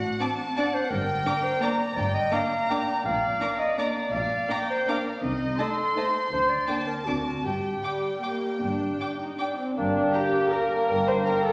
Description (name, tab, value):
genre	classical, orchestral ballroom waltz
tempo	146-180 BPM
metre	3/4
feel	rubato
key	G minor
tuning	A4 = 435 Hz
part	warm symphonic violin section	melody	0.0-11.3 s	D5 to C6	-33 LUFS	equal	none
part	clear clarinet	second line	0.0-11.5 s	D4 to G5	-32 LUFS	equal	none
part	dark symphonic double bass section	bass	0.0-11.2 s	G1 to D2	-40 LUFS	equal	none
part	warm symphonic cello section	bass	0.0-11.2 s	G2 to D3	-38 LUFS	equal	none
part	warm chamber violin section	second line	0.2-11.5 s	D4 to D6	-36 LUFS	equal	none
part	dark symphonic viola section	accompaniment	0.2-11.5 s	G3 to C5	-32 LUFS	equal	none
part	hollow large flute ensemble	second line	9.8-11.5 s	G5	-36 LUFS	equal	none
part	warm oboe	second line	9.8-11.5 s	D4 to C5	-37 LUFS	equal	none
part	mellow bassoon	accompaniment	9.8-11.5 s	Bb3	-29 LUFS	equal	none
part	mellow French horn section	sustained chords	9.8-11.5 s	Bb3 to D4	-38 LUFS	equal	none
room	wet recital hall reverb, RT60 1.5 s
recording	none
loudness	-26 LUFS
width	mono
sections	0.0-9.8 A section; 9.8-11.5 A section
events	none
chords	0.0 D7/A; 0.9 Gm; 3.1 Bb; 5.2 Adim/C; 6.3 Gm/D (rootless); 7.1 D; 7.4 Gm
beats	0.20 0.57 | 0.92 1.27 1.62 | 1.97 2.32 2.70 | 3.05 3.41 3.78 | 4.13 4.49 4.87 | 5.23 5.59 5.97 | 6.32 6.68 7.07 | 7.44 7.83 8.24 | 8.62 9.00 9.40 | 9.77 10.14 10.52 | 10.89 11.26